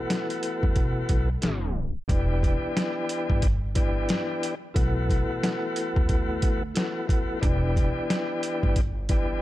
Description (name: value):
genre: hip hop, boom-bap hip-hop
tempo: 90 BPM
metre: 4/4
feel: swing 60% on 16ths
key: E minor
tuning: A4 = 445 Hz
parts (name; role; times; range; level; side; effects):
- tonewheel organ; accompaniment; 0.0-9.4 s; E3 to G4; -29 LUFS; left 2 dB; fast rotary speaker, cassette tape, high-pass filter, low-pass filter
- boom bap sampler-style drum kit; drums; 0.1-9.3 s; hi-hat, kick drum, snare drum; -26 LUFS; equal; none
- upright bass; bass; 0.6-9.4 s; E1 to B2; -28 LUFS; equal; none
room: little or no reverb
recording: dark, warm production, tape stop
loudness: -23 LUFS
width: side -15 dB against mid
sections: 0.0-2.1 A section; 2.1-9.4 B section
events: tape stop 1.4-2.1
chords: 0.0 B7sus4; 2.1 Em7; 4.8 B7sus4; 7.4 Em7